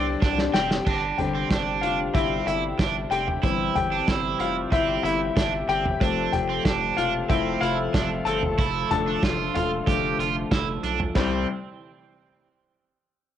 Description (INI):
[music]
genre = piano-driven pop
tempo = 93 BPM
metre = 4/4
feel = straight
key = unclear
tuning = A4 = 439 Hz
[part]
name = clear baby grand piano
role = accompaniment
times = 0.0-11.5 s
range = C2 to A5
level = -26 LUFS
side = left 6 dB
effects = cassette tape
[part]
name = sweeping resonant pad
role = sustained chords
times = 0.0-11.5 s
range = C3 to A4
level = -33 LUFS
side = equal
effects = chorus, cassette tape
[part]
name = overdriven semi-hollow guitar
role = riff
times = 0.0-11.5 s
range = C4 to G4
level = -28 LUFS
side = right 11 dB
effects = cassette tape
[part]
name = round analog bass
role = bass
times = 0.0-11.5 s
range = E1 to C2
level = -32 LUFS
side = right 1 dB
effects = none
[part]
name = dark French horn section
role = second line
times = 0.2-0.5 s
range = D3 to D4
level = -31 LUFS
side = left 6 dB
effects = cassette tape, analog delay
[part]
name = loose indie drum kit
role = drums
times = 0.2-11.3 s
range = crash cymbal, hi-hat, kick drum, snare drum, toms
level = -26 LUFS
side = right 1 dB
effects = cassette tape
[sound]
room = light reverb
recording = home recording on cassette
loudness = -22 LUFS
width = side -10 dB against mid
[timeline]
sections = 0.9-11.2 A section; 11.2-13.4 B section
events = drum fill 0.2-0.9; grand piano solo 0.9-11.2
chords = 0.0 Csus2; 0.9 Gsus4; 6.0 F; 8.6 Dm; 11.2 C